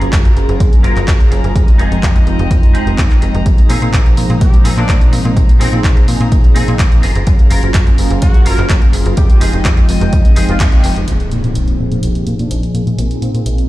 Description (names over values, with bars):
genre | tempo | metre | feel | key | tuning
filtered disco house | 126 BPM | 4/4 | straight | unclear | A4 = 440 Hz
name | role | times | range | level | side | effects
mellow synth brass | accompaniment | 0.0-13.7 s | F3 to G5 | -19 LUFS | equal | chorus, phaser, sidechain pumping, low-pass filter
clear studio string section | sustained chords | 0.0-13.7 s | Eb4 to Bb5 | -27 LUFS | left 3 dB | sidechain pumping, low-pass filter
semi-hollow electric guitar | riff | 0.0-13.3 s | Bb3 to Bb4 | -25 LUFS | equal | ensemble chorus, sidechain pumping, low-pass filter
slap-like FM bass | bass | 0.0-13.6 s | F1 to Bb2 | -16 LUFS | equal | sidechain pumping, low-pass filter
punchy analog drum machine | drums | 0.0-13.7 s | handclaps, hi-hat | -24 LUFS | equal | none
electronic kick drum | drums | 0.1-10.7 s | none | -10 LUFS | equal | none
clear horn section | melody | 4.4-13.4 s | C4 to Bb4 | -27 LUFS | left 1 dB | sidechain pumping, low-pass filter, ping-pong delay
impact | sound effects | 11.1-13.0 s | none | -23 LUFS | equal | none
room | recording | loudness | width
little or no reverb | played on a big sound system in a bare room, stone room reverb | -9 LUFS | side -16 dB against mid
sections
0.0-11.1 A section; 11.1-13.7 B section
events
band accent 10.6; impact 11.1-13.0; filter sweep 11.1-13.7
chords
0.0 Gbmaj9; 1.6 Fm7; 3.5 Bb9sus4; 7.0 Gbmaj9; 9.2 Fm7; 11.1 Bb9sus4